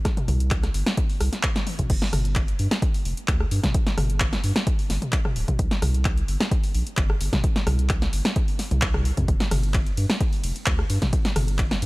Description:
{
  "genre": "acid house",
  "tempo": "130 BPM",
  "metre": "4/4",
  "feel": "straight",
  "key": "G minor",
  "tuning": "A4 = 438 Hz",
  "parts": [
    { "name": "electronic kick drum", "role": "drums", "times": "0.1-11.7 s", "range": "none", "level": "-24 LUFS", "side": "equal", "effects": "overdrive" },
    { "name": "punchy analog drum machine", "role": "drums", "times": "0.1-11.9 s", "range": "crash cymbal, handclaps, hi-hat, ride cymbal, rim click, snare drum, toms", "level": "-26 LUFS", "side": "equal", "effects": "overdrive" },
    { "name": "saturated sub bass", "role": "bass", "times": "0.3-11.9 s", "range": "D1 to G2", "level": "-24 LUFS", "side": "equal", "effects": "sidechain pumping" }
  ],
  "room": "little or no reverb",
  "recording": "none",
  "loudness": "-21 LUFS",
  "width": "side -22 dB against mid",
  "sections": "0.0-1.9 A section; 1.9-11.9 A section",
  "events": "drop 0.0-1.9, 1.9-11.9; drum fill 1.7",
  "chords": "none"
}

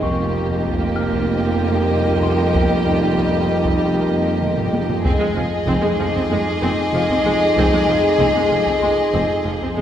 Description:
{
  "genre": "cinematic, suspense film score",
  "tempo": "95 BPM",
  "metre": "4/4",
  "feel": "straight",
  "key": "F minor",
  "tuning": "A4 = 439 Hz",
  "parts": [
    { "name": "warm chamber violin section", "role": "melody", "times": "0.0-9.8 s", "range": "Eb5", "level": "-23 LUFS", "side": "left 3 dB", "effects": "none" },
    { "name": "rich chamber violin section", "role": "second line", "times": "0.0-9.8 s", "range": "G4 to Ab4", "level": "-23 LUFS", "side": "equal", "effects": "none" },
    { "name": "clear chamber viola section", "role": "accompaniment", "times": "0.0-9.8 s", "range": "F3 to C4", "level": "-24 LUFS", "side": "right 2 dB", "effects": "none" },
    { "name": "dark French horn section", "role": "sustained chords", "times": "0.0-9.8 s", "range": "G3 to Eb4", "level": "-24 LUFS", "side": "equal", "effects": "none" },
    { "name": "rich chamber cello section", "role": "bass", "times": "0.0-9.8 s", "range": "F2", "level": "-25 LUFS", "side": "right 1 dB", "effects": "none" },
    { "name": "warm chamber double bass section", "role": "bass", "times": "0.0-9.8 s", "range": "F1", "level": "-26 LUFS", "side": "right 1 dB", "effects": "none" },
    { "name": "organ-like drone", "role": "drone", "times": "0.1-9.8 s", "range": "F2", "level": "-28 LUFS", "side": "equal", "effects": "none" },
    { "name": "taiko ensemble", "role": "drums", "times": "0.0-9.8 s", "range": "none", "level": "-26 LUFS", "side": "equal", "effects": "none" },
    { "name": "small celesta", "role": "texture", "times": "0.0-9.8 s", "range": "C6 to F6", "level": "-34 LUFS", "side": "left 4 dB", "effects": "none" },
    { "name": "rich studio violin section", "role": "texture", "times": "5.1-9.7 s", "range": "Ab5 to D6", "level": "-32 LUFS", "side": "left 3 dB", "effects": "none" }
  ],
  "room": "wet scoring stage reverb, RT60 1.7 s",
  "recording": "heard from further back in the room",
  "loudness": "-16 LUFS",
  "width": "side -10 dB against mid",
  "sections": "0.0-9.8 A section",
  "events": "drum fill 4.4-5.0",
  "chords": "0.0 Ebadd9/F; 5.0 Fm7"
}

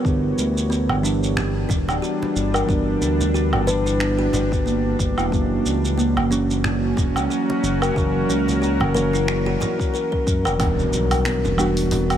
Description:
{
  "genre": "organic downtempo",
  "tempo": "91 BPM",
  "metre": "4/4",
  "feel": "swing 57% on 16ths",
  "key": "unclear",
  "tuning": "A4 = 443 Hz",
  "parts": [
    { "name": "muted felt-like synth keys", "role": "accompaniment", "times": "0.0-12.2 s", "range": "E3 to G4", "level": "-26 LUFS", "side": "right 2 dB", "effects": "chorus, sidechain pumping, tape echo" },
    { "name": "bowed-like drone", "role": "sustained chords", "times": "0.0-10.6 s", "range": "F#3 to C#5", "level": "-28 LUFS", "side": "equal", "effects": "built-in reverb, sidechain pumping" },
    { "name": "kalimba", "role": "arpeggios", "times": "0.0-11.8 s", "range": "A#3 to B4", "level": "-24 LUFS", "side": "equal", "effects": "tape echo" },
    { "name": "smooth gliding synth bass", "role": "bass", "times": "0.0-12.2 s", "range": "D1 to F#2", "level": "-23 LUFS", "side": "equal", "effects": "none" },
    { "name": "electronic kick drum", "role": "drums", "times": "0.0-10.7 s", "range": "none", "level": "-23 LUFS", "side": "equal", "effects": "none" },
    { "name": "deep house drum kit", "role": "drums", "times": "0.1-12.2 s", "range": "finger snaps, hi-hat, shaker, woodblock", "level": "-28 LUFS", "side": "right 2 dB", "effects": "none" },
    { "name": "congas", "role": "percussion", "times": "0.9-12.1 s", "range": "none", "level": "-30 LUFS", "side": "right 1 dB", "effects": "none" },
    { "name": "impact", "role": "sound effects", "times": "10.6-12.2 s", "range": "none", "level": "-28 LUFS", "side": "left 1 dB", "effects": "none" }
  ],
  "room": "light reverb",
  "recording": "none",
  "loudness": "-18 LUFS",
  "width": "side -10 dB against mid",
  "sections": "0.0-10.6 A section; 10.6-12.2 B section",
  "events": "impact 10.6-12.2",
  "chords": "0.1 G6; 5.3 F#7; 10.6 Em7"
}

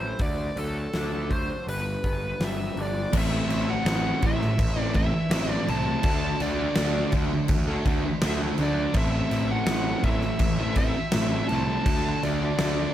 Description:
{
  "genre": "quiet-loud alternative rock",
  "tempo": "82 BPM",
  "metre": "4/4",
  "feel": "straight",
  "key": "A dorian",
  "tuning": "A4 = 440 Hz",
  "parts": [
    { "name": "bluesy overdriven lead guitar", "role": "melody", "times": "0.0-12.9 s", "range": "A4 to A5", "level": "-31 LUFS", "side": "equal", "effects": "distortion" },
    { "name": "twangy electric guitar", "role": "arpeggios", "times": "0.0-3.1 s", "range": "G2 to E4", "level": "-37 LUFS", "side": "left 2 dB", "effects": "wide subtle chorus" },
    { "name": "fuzz picked electric bass", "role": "bass", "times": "0.0-12.9 s", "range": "G1 to D2", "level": "-29 LUFS", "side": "equal", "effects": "overdrive" },
    { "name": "huge arena drum kit", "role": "drums", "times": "0.2-12.8 s", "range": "crash cymbal, hi-hat, kick drum, snare drum", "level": "-28 LUFS", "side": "equal", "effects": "none" },
    { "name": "thick fuzz guitar", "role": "riff", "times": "3.1-12.9 s", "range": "A2 to A4", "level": "-27 LUFS", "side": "equal", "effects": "distortion" }
  ],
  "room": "small room ambience",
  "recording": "none",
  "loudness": "-23 LUFS",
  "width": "side -12 dB against mid",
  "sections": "0.0-3.1 A section; 3.1-12.9 B section",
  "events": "none",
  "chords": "0.2 D; 1.7 G; 3.1 Am; 6.1 D; 9.0 Am; 11.9 D"
}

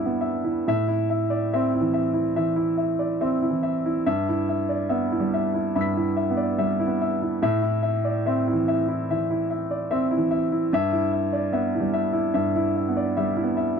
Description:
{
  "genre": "neoclassical minimalist piano",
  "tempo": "72 BPM",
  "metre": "4/4",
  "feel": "rubato",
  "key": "A minor",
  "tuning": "A4 = 440 Hz",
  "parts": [
    { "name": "warm grand piano", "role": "solo", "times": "0.0-13.8 s", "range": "G2 to B6", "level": "-21 LUFS", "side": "equal", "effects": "none" }
  ],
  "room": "light reverb",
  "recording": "dark, warm production",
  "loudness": "-21 LUFS",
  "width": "side -6 dB against mid",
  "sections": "0.7-13.8 A section",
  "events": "none",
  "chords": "0.0 Em/G; 0.7 Am; 4.1 Em/G; 7.4 Am; 10.7 Em/G"
}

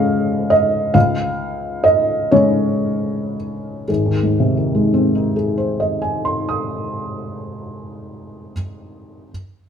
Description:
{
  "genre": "neoclassical minimalist piano",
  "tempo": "37-49 BPM (dotted quarters)",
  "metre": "6/8",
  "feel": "rubato",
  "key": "Ab major",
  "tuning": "A4 = 445 Hz",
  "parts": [
    { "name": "felt-muted upright piano", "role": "solo", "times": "0.0-9.3 s", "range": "Ab1 to Eb6", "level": "-16 LUFS", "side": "equal", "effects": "none" }
  ],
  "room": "moderate stone room reverb, RT60 1.1 s",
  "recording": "band playing live in one room",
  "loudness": "-16 LUFS",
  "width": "side -7 dB against mid",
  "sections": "0.0-3.9 A section; 3.9-7.1 B section",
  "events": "slowing down 0.0-3.9",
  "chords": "0.0 Db; 3.9 Ab"
}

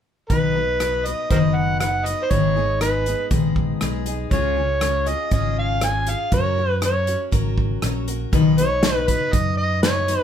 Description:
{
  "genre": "honky-tonk and classic country",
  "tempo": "120 BPM",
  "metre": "4/4",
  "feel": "straight",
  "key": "B major",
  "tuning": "A4 = 440 Hz",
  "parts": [
    { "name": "overdriven harmonica", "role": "melody", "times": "0.3-10.2 s", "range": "A#4 to G#5", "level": "-22 LUFS", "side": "right 1 dB", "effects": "none" },
    { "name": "picked steel-string acoustic guitar", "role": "accompaniment", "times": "0.3-10.2 s", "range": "G#2 to B4", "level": "-24 LUFS", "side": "left 5 dB", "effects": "none" },
    { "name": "fingered electric bass", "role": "bass", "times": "0.3-10.1 s", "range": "F#1 to F#2", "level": "-25 LUFS", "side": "equal", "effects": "none" },
    { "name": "natural country drum kit", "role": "drums", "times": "0.3-10.2 s", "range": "hi-hat, kick drum, rim click, snare drum", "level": "-23 LUFS", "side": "right 1 dB", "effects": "none" }
  ],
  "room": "wet studio reverb, RT60 0.5 s",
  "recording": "band playing live in one room",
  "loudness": "-18 LUFS",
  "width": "side -9 dB against mid",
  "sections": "0.3-8.3 A section; 8.3-10.2 B section",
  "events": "none",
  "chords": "0.3 B; 2.3 G#m; 4.3 C#; 6.3 F#; 8.3 B"
}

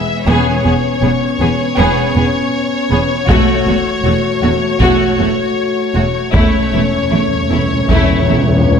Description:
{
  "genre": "cinematic, epic orchestral film score",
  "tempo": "79 BPM",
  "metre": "4/4",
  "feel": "straight",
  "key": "unclear",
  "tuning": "A4 = 440 Hz",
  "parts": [
    { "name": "warm symphonic violin section", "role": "melody", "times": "0.0-8.8 s", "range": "C#5 to E5", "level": "-19 LUFS", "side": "left 5 dB", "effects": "none" },
    { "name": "warm French horn section", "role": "sustained chords", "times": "0.0-8.8 s", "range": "G#3 to F#4", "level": "-19 LUFS", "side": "left 3 dB", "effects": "none" },
    { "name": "rich symphonic violin section", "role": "second line", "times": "0.3-8.4 s", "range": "E4 to G#4", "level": "-20 LUFS", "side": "left 2 dB", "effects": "none" },
    { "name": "warm symphonic viola section", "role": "accompaniment", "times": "0.3-8.4 s", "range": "A3 to B3", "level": "-20 LUFS", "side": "right 1 dB", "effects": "none" },
    { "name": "rich studio cello section", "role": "bass", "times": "0.3-8.4 s", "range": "E2", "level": "-20 LUFS", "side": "right 3 dB", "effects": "none" },
    { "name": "rich studio double bass section", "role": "bass", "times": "0.3-8.4 s", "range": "E1", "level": "-20 LUFS", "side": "right 4 dB", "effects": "none" },
    { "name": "timpani", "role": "percussion", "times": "0.3-1.4, 6.3-8.8 s", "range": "E2", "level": "-18 LUFS", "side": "left 1 dB", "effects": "none" },
    { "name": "solo taiko drums", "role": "drums", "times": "3.3-8.6 s", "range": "none", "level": "-16 LUFS", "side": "equal", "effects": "none" }
  ],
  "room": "wet scoring stage reverb, RT60 1.5 s",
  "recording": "none",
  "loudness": "-11 LUFS",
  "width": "side -7 dB against mid",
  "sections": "0.0-8.8 A section",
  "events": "build-up 0.0-8.8; timpani fill 6.3-8.8",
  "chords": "0.3 C#m7/E; 3.3 F#m7/E; 6.3 A/E"
}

